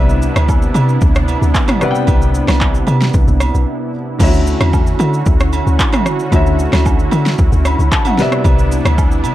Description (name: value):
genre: amapiano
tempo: 113 BPM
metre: 4/4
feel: straight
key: D major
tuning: A4 = 436 Hz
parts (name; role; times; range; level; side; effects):
- warm concert grand piano; accompaniment; 0.0-9.3 s; C3 to B5; -20 LUFS; left 2 dB; none
- warm analog pad; sustained chords; 0.0-9.3 s; C3 to F#4; -20 LUFS; right 1 dB; chorus, sidechain pumping
- deep log drum bass; bass; 0.0-9.3 s; B1 to D3; -14 LUFS; equal; none
- deep house drum kit; drums; 0.1-9.3 s; crash cymbal, handclaps, kick drum, rim click, shaker, snare drum, toms; -15 LUFS; equal; overdrive
- agogo bells and woodblock; percussion; 0.4-9.3 s; none; -24 LUFS; right 6 dB; none
room: digital ambience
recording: dark, warm production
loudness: -11 LUFS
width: side -14 dB against mid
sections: 0.0-4.2 A section; 4.2-9.3 A section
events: drop 0.0-4.2, 4.2-9.3; break 3.7-4.2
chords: 0.0 Cmaj9; 4.2 Dmaj9; 8.2 Cmaj9